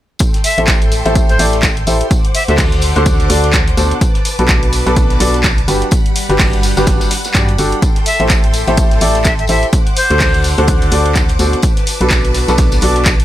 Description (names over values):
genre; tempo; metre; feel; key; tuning
piano house; 126 BPM; 4/4; swing 58% on 16ths; A dorian; A4 = 440 Hz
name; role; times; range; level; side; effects
string machine, violins; sustained chords; 0.2-13.2 s; G3 to D6; -23 LUFS; left 1 dB; ensemble chorus, sidechain pumping
cloth-damped thuddy drum kit; drums; 0.2-13.2 s; hi-hat, snare drum, tambourine; -27 LUFS; left 2 dB; none
electronic kick drum; drums; 0.2-13.2 s; none; -14 LUFS; equal; none
punchy analog drum machine; drums; 0.2-13.2 s; handclaps, hi-hat; -19 LUFS; equal; none
bright jazz flute; melody; 0.4-2.5, 8.1-10.4 s; C5 to E5; -19 LUFS; left 1 dB; dub echo
bright upright piano; riff; 0.6-13.1 s; B2 to D5; -17 LUFS; equal; vintage 12-bit sampler grit, sidechain pumping, dub echo
organ-like FM bass; bass; 0.6-13.2 s; G1 to G2; -16 LUFS; equal; tube saturation, sidechain pumping
room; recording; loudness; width
little or no reverb; none; -10 LUFS; side -13 dB against mid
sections
0.2-13.2 A section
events
none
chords
0.2 Am7; 2.1 D7; 4.0 Bm7; 5.7 Gmaj7; 7.8 Am7; 9.7 D7; 11.6 Bm7